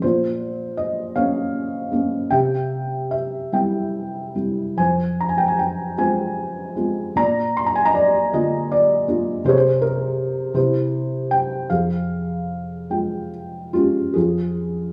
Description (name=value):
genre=classical, lyrical solo piano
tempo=48-56 BPM (dotted quarters)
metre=6/8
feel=rubato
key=F minor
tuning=A4 = 441 Hz
part: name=felt-muted upright piano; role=solo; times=0.0-14.9 s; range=F2 to C6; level=-21 LUFS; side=equal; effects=none
room=light reverb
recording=studio reverb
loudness=-21 LUFS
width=mono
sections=0.0-14.2 A section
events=none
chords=0.0 Bbmadd9; 2.3 C; 4.8 Fm; 7.2 Bb; 9.4 Bb7sus2/C; 10.5 C; 11.7 Fmadd9; 14.2 Fm